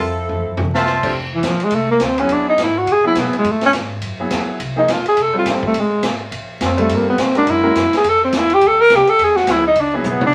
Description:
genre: jazz, big band swing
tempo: 209 BPM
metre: 4/4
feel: swing 60% on 8ths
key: unclear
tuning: A4 = 441 Hz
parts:
  - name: mellow saxophone section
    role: melody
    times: 0.0-0.8 s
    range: F3 to A4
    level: -26 LUFS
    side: equal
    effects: none
  - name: upright bass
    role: bass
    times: 0.0-10.3 s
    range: F1 to B2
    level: -31 LUFS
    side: equal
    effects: none
  - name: swinging big-band drum kit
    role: drums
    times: 0.0-10.3 s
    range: crash cymbal, hi-hat, kick drum, ride cymbal, snare drum, toms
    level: -26 LUFS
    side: equal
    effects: none
  - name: clear trumpet section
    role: stabs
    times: 0.7-1.1 s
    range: F4 to A5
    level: -21 LUFS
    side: equal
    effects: none
  - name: clear baby grand piano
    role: accompaniment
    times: 1.0-10.3 s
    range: F2 to C5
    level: -24 LUFS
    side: equal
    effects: none
  - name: breathy tenor saxophone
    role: melody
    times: 1.3-10.3 s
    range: E3 to Bb4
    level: -16 LUFS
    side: equal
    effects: none
room: wet studio reverb, RT60 0.5 s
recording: vinyl crackle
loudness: -16 LUFS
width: mono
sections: 0.0-1.1 A section; 1.1-10.3 B section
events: drum fill 0.3-0.9, 10.0; tenor saxophone solo 1.1-10.3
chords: 0.0 Fmaj7; 2.3 E; 4.6 Bb9sus4; 5.2 F; 5.7 Bb5; 6.9 Gm9; 7.5 Gb9; 8.0 F5; 9.2 E9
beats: 0.28 0.57 0.85 | 1.14 1.43 1.72 2.00 | 2.29 2.58 2.87 3.15 | 3.44 3.73 4.02 4.30 | 4.59 4.88 5.16 5.45 | 5.74 6.03 6.31 6.60 | 6.89 7.17 7.46 7.75 | 8.03 8.32 8.61 8.89 | 9.18 9.47 9.75 10.04 | 10.33

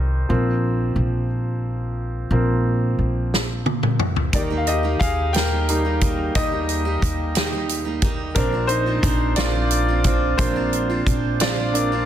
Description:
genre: six-eight pop ballad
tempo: 59 BPM (dotted quarters)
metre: 6/8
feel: straight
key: unclear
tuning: A4 = 440 Hz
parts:
  - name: clear concert grand piano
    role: accompaniment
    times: 0.0-12.1 s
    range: Eb3 to G5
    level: -23 LUFS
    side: left 1 dB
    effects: none
  - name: upright bass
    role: bass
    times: 0.0-12.1 s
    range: Bb1 to Eb2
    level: -23 LUFS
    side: equal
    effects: none
  - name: natural country drum kit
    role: drums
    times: 3.3-11.9 s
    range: hi-hat, kick drum, snare drum, toms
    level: -22 LUFS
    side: equal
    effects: none
  - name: picked steel-string acoustic guitar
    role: arpeggios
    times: 4.3-12.1 s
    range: Bb2 to G4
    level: -28 LUFS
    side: right 6 dB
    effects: none
room: light reverb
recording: dense, heavily limited modern master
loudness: -18 LUFS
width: side -10 dB against mid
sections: 0.0-12.1 A section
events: grand piano solo 0.0-12.1; drum fill 3.3-4.3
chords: 0.3 Bbsus2; 4.3 Eb; 8.4 Bbadd9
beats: | 0.29 1.30 | 2.31 3.32 | 4.33 5.35 | 6.36 7.37 | 8.37 9.38 | 10.40 11.41

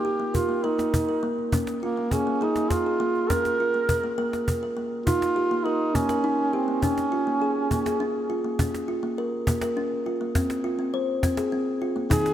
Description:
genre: world meditative, meditative tuned percussion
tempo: 68 BPM (dotted quarters)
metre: 6/8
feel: straight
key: Bb dorian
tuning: A4 = 444 Hz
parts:
  - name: mellow duduk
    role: melody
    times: 0.0-8.3, 12.1-12.3 s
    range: Bb3 to Bb4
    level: -25 LUFS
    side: right 2 dB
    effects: analog delay
  - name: kalimba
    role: arpeggios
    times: 0.0-12.3 s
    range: Eb3 to C5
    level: -26 LUFS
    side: left 1 dB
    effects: none
  - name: cajon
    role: percussion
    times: 0.0-12.3 s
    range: none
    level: -26 LUFS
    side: equal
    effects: none
room: wet plate reverb, RT60 2.7 s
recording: echo-heavy mix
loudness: -23 LUFS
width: side -11 dB against mid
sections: 0.0-5.1 A section; 5.1-12.3 B section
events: none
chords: 0.0 Eb/Bb; 1.5 Db/Bb; 3.3 Bbm; 5.1 Eb; 6.8 Db; 8.6 Bbm; 10.4 F5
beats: 0.65 | 1.53 2.42 | 3.30 4.19 | 5.07 5.95 | 6.83 7.71 | 8.59 9.47 | 10.35 11.23 | 12.11

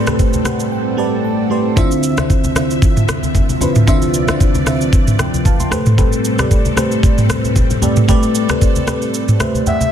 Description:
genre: amapiano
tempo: 114 BPM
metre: 4/4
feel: swing 55% on 16ths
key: D dorian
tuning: A4 = 440 Hz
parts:
  - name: FM electric piano with soft pad layer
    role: accompaniment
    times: 0.0-9.9 s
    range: D3 to C6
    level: -18 LUFS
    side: right 2 dB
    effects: chorus
  - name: string machine, cellos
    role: sustained chords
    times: 0.0-9.9 s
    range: D2 to E5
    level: -21 LUFS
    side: equal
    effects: phaser, ensemble chorus
  - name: soft round pluck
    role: stabs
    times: 0.0-9.0 s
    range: C4 to C5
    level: -26 LUFS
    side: left 6 dB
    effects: chorus, ping-pong delay
  - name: afro-pop drum kit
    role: drums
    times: 0.1-9.9 s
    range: kick drum, rim click, shaker, toms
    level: -14 LUFS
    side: equal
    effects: soft clipping on snare
  - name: congas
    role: percussion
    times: 0.1-9.9 s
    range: none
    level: -22 LUFS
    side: left 2 dB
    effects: none
  - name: breathy flute-like synth lead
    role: melody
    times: 9.7-9.9 s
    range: E5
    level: -17 LUFS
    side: left 3 dB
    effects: chorus
room: digital ambience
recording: dense, heavily limited modern master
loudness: -12 LUFS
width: side -9 dB against mid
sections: 0.0-9.9 A section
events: FM electric piano fill 0.2-1.8, 9.1-9.9; silent gap 0.7-1.8; kick muted 9.1-9.9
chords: 0.0 Am9; 1.8 Dm9; 5.7 Am9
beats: 0.19 0.72 1.24 | 1.77 2.30 2.82 3.35 | 3.88 4.40 4.93 5.45 | 5.98 6.51 7.03 7.56 | 8.09 8.61 9.14 9.66

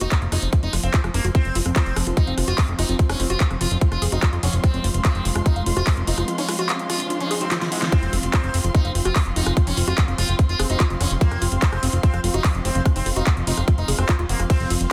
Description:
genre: psychedelic trance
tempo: 146 BPM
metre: 4/4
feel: straight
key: F minor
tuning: A4 = 440 Hz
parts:
  - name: sitar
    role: melody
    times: 0.0-14.7 s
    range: Ab3 to F4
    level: -32 LUFS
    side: equal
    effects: phaser, sidechain pumping, delay
  - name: pulsing gated texture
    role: sustained chords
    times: 0.0-14.9 s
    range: F3 to C4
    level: -34 LUFS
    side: equal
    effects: chorus, built-in reverb, sidechain pumping
  - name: woody wave-folded pluck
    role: riff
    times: 0.0-14.8 s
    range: Eb4 to Gb5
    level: -33 LUFS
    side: equal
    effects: chorus, sidechain pumping, delay
  - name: fat analog bass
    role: bass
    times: 0.0-14.9 s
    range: Eb1 to F1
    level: -25 LUFS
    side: equal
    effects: none
  - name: big-room dance drum kit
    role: drums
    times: 0.0-14.9 s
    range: handclaps, hi-hat, ride cymbal, rim click, snare drum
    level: -29 LUFS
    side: equal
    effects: overdrive, studio reverb
  - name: dark studio string section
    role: texture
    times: 0.0-14.9 s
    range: C4 to C6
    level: -35 LUFS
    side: equal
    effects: sidechain pumping
  - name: electronic kick drum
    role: drums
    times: 0.1-14.6 s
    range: none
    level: -20 LUFS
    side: equal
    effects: studio reverb
  - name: riser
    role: sound effects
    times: 5.8-7.9 s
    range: none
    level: -36 LUFS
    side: equal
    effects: none
room: light reverb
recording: dense, heavily limited modern master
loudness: -21 LUFS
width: mono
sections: 0.0-7.9 A section; 7.9-14.9 B section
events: fade-in on string section 0.0-7.9; riser 5.8-7.9; drum fill 7.5-7.9; band accent 7.8; drop 7.9-14.9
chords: 0.0 F5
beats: 0.12 0.53 0.94 | 1.35 1.76 2.17 2.58 | 2.99 3.40 3.81 4.22 | 4.64 5.05 5.46 5.87 | 6.28 6.69 7.10 7.51 | 7.92 8.34 8.75 9.16 | 9.57 9.98 10.39 10.80 | 11.21 11.62 12.03 12.44 | 12.86 13.27 13.68 14.09 | 14.50 14.91

